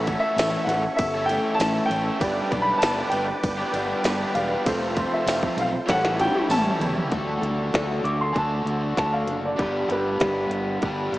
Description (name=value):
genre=folk rock and heartland rock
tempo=98 BPM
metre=4/4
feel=straight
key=D major from 7.1 s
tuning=A4 = 439 Hz
part: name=dark grand piano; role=melody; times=0.0-11.1 s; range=G4 to D6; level=-26 LUFS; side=equal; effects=none
part: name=bright upright piano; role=accompaniment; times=0.0-7.1 s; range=none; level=barely audible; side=none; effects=none
part: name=picked plugged-in acoustic archtop guitar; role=accompaniment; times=0.0-11.2 s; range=G2 to B4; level=-29 LUFS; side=left 1 dB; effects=lush chorus
part: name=musette accordion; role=sustained chords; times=0.0-7.1 s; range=F4 to D6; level=-34 LUFS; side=right 1 dB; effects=none
part: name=raw garage guitar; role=riff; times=0.0-11.2 s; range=F2 to B4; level=-29 LUFS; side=equal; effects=overdrive
part: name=modern bright fingered electric bass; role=bass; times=0.0-11.2 s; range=E1 to E2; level=-30 LUFS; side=equal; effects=none
part: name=minimal click drum kit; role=drums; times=0.1-11.2 s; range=hi-hat, kick drum, ride cymbal, snare drum, toms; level=-28 LUFS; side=equal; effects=overdrive
part: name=tambourine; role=percussion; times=0.4-6.6 s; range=none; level=-42 LUFS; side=right 3 dB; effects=none
room=wet cathedral reverb, RT60 6.2 s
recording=dreamy mix soaked in reverb, small speaker sound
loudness=-21 LUFS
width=side -17 dB against mid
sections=0.0-7.1 A section; 7.1-11.2 B section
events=drum fill 5.9-7.1; grand piano solo 7.1-11.2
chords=0.0 A; 2.2 G; 4.7 F; 5.9 A7; 7.1 D; 9.6 G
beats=0.37 0.98 1.59 | 2.21 2.82 3.43 4.04 | 4.66 5.27 5.88 6.50 | 7.12 7.73 8.35 8.97 | 9.58 10.20 10.82